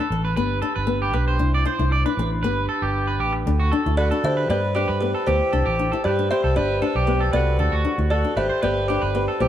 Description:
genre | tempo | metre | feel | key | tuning
highlife | 116 BPM | 4/4 | straight | G major | A4 = 440 Hz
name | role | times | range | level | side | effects
nylon-string guitar | accompaniment | 0.0-9.5 s | B3 to E4 | -28 LUFS | left 8 dB | none
electric guitar at the edge of break-up | arpeggios | 0.0-9.5 s | F#4 to D5 | -25 LUFS | right 2 dB | spring reverb
fingered electric bass | bass | 0.1-9.5 s | G1 to D3 | -23 LUFS | equal | none
mellow tonewheel organ | sustained chords | 0.4-4.5 s | D4 to C5 | -31 LUFS | right 3 dB | slow rotary speaker
buzzing kalimba | melody | 4.0-9.5 s | G4 to E5 | -23 LUFS | equal | none
warm alto saxophone | second line | 4.0-9.5 s | D4 to G4 | -31 LUFS | left 1 dB | none
room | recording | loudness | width
light reverb | band playing live in one room | -19 LUFS | side -11 dB against mid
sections
0.0-4.5 A section; 4.5-9.5 B section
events
none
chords
0.4 G; 1.4 Cadd9; 2.4 G; 3.5 D; 4.5 G; 5.5 Cadd9; 6.6 G; 7.6 D; 8.6 G

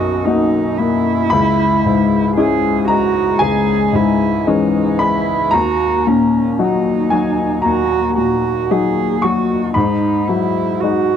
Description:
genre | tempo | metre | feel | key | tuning
neoclassical piano and strings | 57 BPM | 4/4 | rubato | unclear | A4 = 439 Hz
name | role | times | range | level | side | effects
muted cello | second line | 0.0-11.2 s | C#4 to G#4 | -18 LUFS | right 10 dB | none
warm upright piano | accompaniment | 0.0-11.2 s | B1 to C#6 | -15 LUFS | left 4 dB | none
room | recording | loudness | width
light reverb | dry, close 1970s-style studio recording | -13 LUFS | side -8 dB against mid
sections
0.0-11.2 A section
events
none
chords
0.0 Bmaj7; 1.3 C#m7; 5.5 D#m; 9.8 G#m7

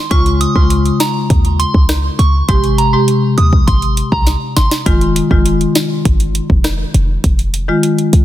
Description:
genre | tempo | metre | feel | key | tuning
dancehall | 101 BPM | 4/4 | straight | F minor | A4 = 440 Hz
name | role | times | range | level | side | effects
soft synth bell | melody | 0.1-4.7 s | Bb5 to Eb6 | -19 LUFS | right 3 dB | chorus, digital delay
marimba with medium mallets | accompaniment | 0.1-7.8 s | C3 to G4 | -16 LUFS | left 2 dB | none
short 808-style bass | bass | 0.1-8.2 s | F1 to Eb2 | -14 LUFS | equal | none
afro-pop drum kit | drums | 0.1-8.2 s | hi-hat, kick drum, rim click, snare drum | -15 LUFS | equal | none
room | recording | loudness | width
light reverb | dense, heavily limited modern master | -10 LUFS | side -13 dB against mid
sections
0.0-8.2 A section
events
drum fill 4.3-4.9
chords
0.1 Db; 2.5 Abmaj7; 4.9 Fm7

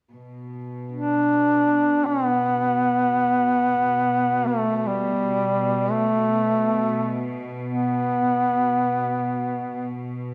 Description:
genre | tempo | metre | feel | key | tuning
caucasian folk, Caucasian lament | free time | none | none | B minor | A4 = 440 Hz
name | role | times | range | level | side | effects
rich studio cello section | drone | 0.1-10.3 s | B2 | -32 LUFS | equal | none
warm duduk | melody | 0.9-9.9 s | G3 to D4 | -22 LUFS | equal | none
room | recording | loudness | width
moderate recital hall reverb, RT60 1.4 s | none | -22 LUFS | mono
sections
0.1-10.3 A section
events
none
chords
none

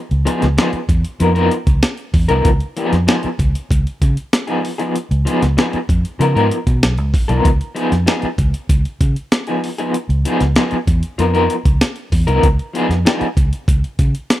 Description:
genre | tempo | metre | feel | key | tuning
funk | 96 BPM | 4/4 | straight | Db mixolydian | A4 = 440 Hz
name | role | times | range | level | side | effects
vintage muted fingered electric bass | bass | 0.1-14.1 s | Cb2 to Db3 | -16 LUFS | equal | none
breakbeat sampler-style drum kit | drums | 0.1-14.4 s | hi-hat, kick drum, snare drum | -16 LUFS | equal | none
electric guitar at the edge of break-up | accompaniment | 0.3-13.3 s | F3 to Bb4 | -17 LUFS | left 2 dB | tremolo
room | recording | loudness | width
digital ambience | dry, close 1970s-style studio recording | -14 LUFS | side -14 dB against mid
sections
0.0-14.4 A section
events
none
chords
0.0 Db9

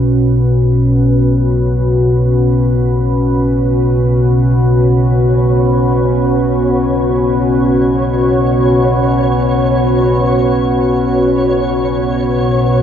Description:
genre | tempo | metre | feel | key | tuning
dark ambient drone | free time | none | none | unclear | A4 = 438 Hz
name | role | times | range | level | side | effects
deep dark ambient pad | sustained chords | 0.0-12.8 s | B2 to B4 | -13 LUFS | equal | chorus, built-in reverb
deep rumbling drone | drone | 0.0-12.8 s | B1 to B2 | -14 LUFS | equal | built-in reverb, wide subtle chorus
flickering grainy texture | texture | 5.1-12.8 s | C#5 | -21 LUFS | right 1 dB | built-in reverb, lush chorus
room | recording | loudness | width
wet lush hall reverb, RT60 2.7 s | dreamy mix soaked in reverb | -10 LUFS | side -9 dB against mid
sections
0.0-12.8 A section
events
none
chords
0.0 Bsus2

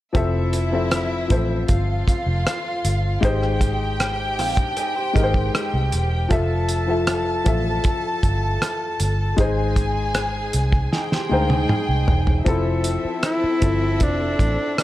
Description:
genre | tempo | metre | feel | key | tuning
lush 1970s-style soul | 78 BPM | 4/4 | straight | F major | A4 = 440 Hz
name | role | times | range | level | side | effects
warm studio violin section | second line | 0.1-14.8 s | C4 to A5 | -27 LUFS | equal | none
dark baby grand piano | accompaniment | 0.1-14.8 s | F3 to G5 | -25 LUFS | left 3 dB | none
cloth-damped thuddy drum kit | drums | 0.1-14.8 s | hi-hat, kick drum, rim click, snare drum, toms | -22 LUFS | equal | none
vintage muted fingered electric bass | bass | 0.2-14.6 s | E1 to D2 | -23 LUFS | equal | none
electric guitar through a small old amp | riff | 4.4-6.1, 10.9-12.4 s | C4 to C5 | -30 LUFS | right 6 dB | lush chorus
breathy tenor saxophone | melody | 13.3-14.8 s | D4 to E4 | -22 LUFS | left 1 dB | none
room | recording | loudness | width
light reverb, studio ambience | dark, warm production | -18 LUFS | side -15 dB against mid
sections
0.2-12.5 A section; 12.5-14.8 B section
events
drum fill 10.9-12.5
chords
0.2 Fmaj7; 3.2 Abmaj7; 6.3 Fmaj7; 9.4 Abmaj7; 12.5 Fmaj7

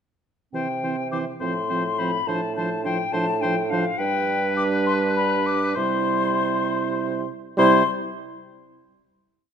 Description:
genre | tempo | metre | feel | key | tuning
quick classical-period movement for wind quintet | 68 BPM (dotted quarters) | 6/8 | straight | C major | A4 = 439 Hz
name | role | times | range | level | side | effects
silver concert flute | melody | 0.5-7.9 s | F5 to D6 | -25 LUFS | left 7 dB | none
bright oboe | second line | 0.5-7.8 s | B4 to C5 | -30 LUFS | left 3 dB | none
dark clarinet | accompaniment | 0.5-7.8 s | C4 to E4 | -28 LUFS | right 6 dB | none
mellow French horn | accompaniment | 0.5-7.8 s | E3 to G3 | -29 LUFS | right 2 dB | none
mellow bassoon | bass | 0.5-7.8 s | G2 to C3 | -27 LUFS | right 4 dB | none
room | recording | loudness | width
moderate recital hall reverb, RT60 1.6 s | minimal, uncompressed stereo recording | -20 LUFS | side -7 dB against mid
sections
0.5-7.6 A section; 7.6-9.4 final chord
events
none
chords
0.5 C; 1.4 F/A; 2.3 Dm7/A; 4.0 G; 5.8 C

